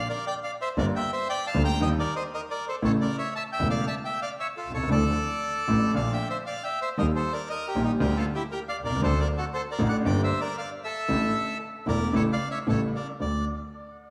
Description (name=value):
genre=tango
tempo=116 BPM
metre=4/4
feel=rubato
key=D minor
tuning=A4 = 440 Hz
part: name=bandoneon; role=melody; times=0.0-13.5 s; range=Eb4 to Bb5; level=-32 LUFS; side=equal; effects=analog delay
part: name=warm grand piano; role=accompaniment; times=0.8-13.4 s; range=E1 to G4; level=-30 LUFS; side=equal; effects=none
part: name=clear double bass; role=bass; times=0.8-13.4 s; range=E1 to Eb2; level=-32 LUFS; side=equal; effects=none
room=moderate scoring stage reverb, RT60 1.5 s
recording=none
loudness=-27 LUFS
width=mono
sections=0.0-13.2 A section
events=none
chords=0.0 Bb; 0.8 Gm7; 1.8 Eb; 2.8 A; 4.9 Dmadd9; 5.9 Bb; 7.0 Eb; 8.0 Bb6/D; 9.0 D; 10.1 Gm; 11.1 Asus4; 12.1 A; 12.7 A7; 13.2 D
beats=0.26 | 0.77 1.29 1.80 2.31 | 2.83 3.34 3.85 4.37 | 4.90 5.42 5.95 6.47 | 6.98 7.50 8.01 8.52 | 9.03 9.54 10.05 10.57 | 11.09 11.61 12.14 12.67 | 13.20